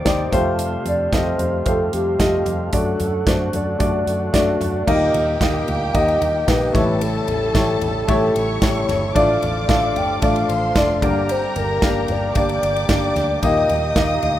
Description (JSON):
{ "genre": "piano-driven pop", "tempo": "112 BPM", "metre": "4/4", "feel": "straight", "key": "unclear", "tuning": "A4 = 439 Hz", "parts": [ { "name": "warm baby grand piano", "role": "accompaniment", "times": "0.0-14.4 s", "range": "G2 to F5", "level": "-21 LUFS", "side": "left 2 dB", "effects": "none" }, { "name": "overdriven tonewheel organ", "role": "sustained chords", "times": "0.0-14.4 s", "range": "C3 to D5", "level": "-28 LUFS", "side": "right 1 dB", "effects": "lush chorus" }, { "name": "vintage muted fingered electric bass", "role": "bass", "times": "0.1-14.4 s", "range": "F1 to F#2", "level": "-26 LUFS", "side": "right 1 dB", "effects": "none" }, { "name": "modern studio drum kit", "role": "drums", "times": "0.1-14.4 s", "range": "crash cymbal, hi-hat, kick drum, ride cymbal, snare drum, toms", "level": "-23 LUFS", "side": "right 1 dB", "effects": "none" }, { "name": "hollow clarinet-like synth lead", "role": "melody", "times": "0.9-14.4 s", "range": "G4 to G5", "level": "-22 LUFS", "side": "equal", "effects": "chorus" }, { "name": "warm studio violin section", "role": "second line", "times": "4.9-14.4 s", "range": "G4 to Eb6", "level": "-28 LUFS", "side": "left 1 dB", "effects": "tape echo" } ], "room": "light reverb", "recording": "rough home demo mix", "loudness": "-16 LUFS", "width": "side -12 dB against mid", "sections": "0.0-4.9 A section; 4.9-14.4 B section", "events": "none", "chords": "0.3 Fadd9; 2.7 D/F#; 4.9 Eb; 6.7 A7; 9.2 Dm; 11.0 Gm; 13.4 Eb" }